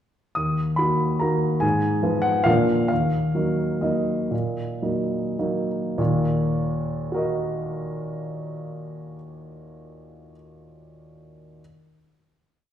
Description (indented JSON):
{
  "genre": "classical, piano waltz",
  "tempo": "98-153 BPM",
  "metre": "3/4",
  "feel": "rubato",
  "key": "Eb minor",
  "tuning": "A4 = 440 Hz",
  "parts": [
    { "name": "warm baby grand piano", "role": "solo", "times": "0.4-11.6 s", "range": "Eb2 to Eb6", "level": "-22 LUFS", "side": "equal", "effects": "none" }
  ],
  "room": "wet recital hall reverb, RT60 1.4 s",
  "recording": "recorded in a church or concert hall",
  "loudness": "-21 LUFS",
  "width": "side -10 dB against mid",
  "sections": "0.4-6.0 A section; 6.0-9.4 final chord",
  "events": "slowing down 2.2-6.0",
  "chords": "0.4 Ebm; 1.6 Fdim/Ab; 2.5 Bb; 2.9 Ebm",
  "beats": "| 0.37 0.79 1.22 | 1.63 2.04 2.46 | 2.90 3.35 3.83 | 4.32 4.83 5.38 | 5.98 6.55 7.13 | 7.70 8.27 8.86"
}